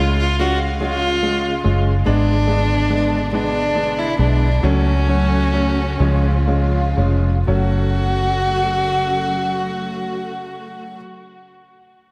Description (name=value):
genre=six-eight pop ballad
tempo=39-48 BPM (dotted quarters)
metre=6/8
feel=straight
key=F# minor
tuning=A4 = 444 Hz
part: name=warm violin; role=melody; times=0.0-11.0 s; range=C#4 to F#4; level=-24 LUFS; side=equal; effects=diffuse ambient delay
part: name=clear grand piano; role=accompaniment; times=0.0-11.0 s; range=E#3 to E#4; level=-26 LUFS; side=equal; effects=none
part: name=warm studio string section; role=sustained chords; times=0.0-11.0 s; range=B2 to E#5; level=-28 LUFS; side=equal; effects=none
part: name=vintage muted fingered electric bass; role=bass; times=0.0-11.0 s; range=E#1 to C#2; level=-21 LUFS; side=equal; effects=none
room=moderate plate reverb, RT60 2.5 s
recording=dreamy mix soaked in reverb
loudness=-18 LUFS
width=mono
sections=0.0-7.5 A section; 7.5-10.6 B section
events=slowing down 2.1-7.5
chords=0.0 C#; 2.1 G#dim; 4.6 F#m/C#; 6.0 C#; 7.5 F#m